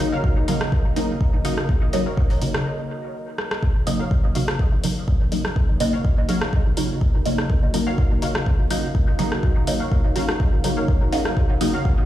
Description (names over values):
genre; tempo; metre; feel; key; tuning
dub techno; 124 BPM; 4/4; swing 53% on 16ths; Eb minor; A4 = 440 Hz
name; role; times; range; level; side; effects
deep dark ambient pad; sustained chords; 0.0-12.1 s; Eb4 to F5; -32 LUFS; right 1 dB; chorus, built-in reverb, sidechain pumping
filtered dub chord stab; stabs; 0.0-11.8 s; Db3 to Eb4; -24 LUFS; equal; phaser, sidechain pumping, dub echo
deep house drum kit; drums; 0.0-11.7 s; hi-hat, rim click; -29 LUFS; equal; dub echo
flickering grainy texture; texture; 0.0-2.7 s; Bb4; -39 LUFS; right 3 dB; built-in reverb, sidechain pumping
filtered dub chord stab; riff; 0.1-11.8 s; Gb4 to F5; -33 LUFS; left 1 dB; ensemble chorus, sidechain pumping, dub echo
electronic kick drum; drums; 0.2-12.0 s; none; -19 LUFS; equal; none
room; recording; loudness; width
light reverb; played on a big sound system in a bare room, large studio reverb; -18 LUFS; side -13 dB against mid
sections
0.0-3.6 A section; 3.6-12.1 A section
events
break 2.7-3.6; drum fill 3.4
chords
0.0 Ebm7